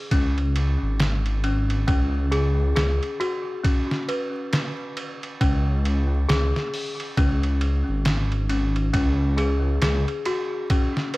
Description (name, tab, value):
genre	trip hop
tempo	68 BPM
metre	4/4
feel	swing 60% on 16ths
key	unclear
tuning	A4 = 438 Hz
part	worn celesta	arpeggios	0.0-11.2 s	C#4 to B4	-27 LUFS	left 2 dB	vintage 12-bit sampler grit, low-pass filter, tape echo
part	dark detuned saw bass	bass	0.1-10.1 s	G#1 to C#2	-22 LUFS	equal	none
part	trip hop sampler-style drum kit	drums	0.1-11.2 s	hi-hat, kick drum, ride cymbal, snare drum	-26 LUFS	equal	none
room	little or no reverb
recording	vinyl crackle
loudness	-21 LUFS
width	side -20 dB against mid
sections	0.0-11.2 A section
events	filter sweep on celesta 0.0-11.2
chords	0.0 C#5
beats	0.12 1.00 | 1.88 2.76 3.65 4.53 | 5.41 6.29 7.17 8.06 | 8.94 9.82 10.71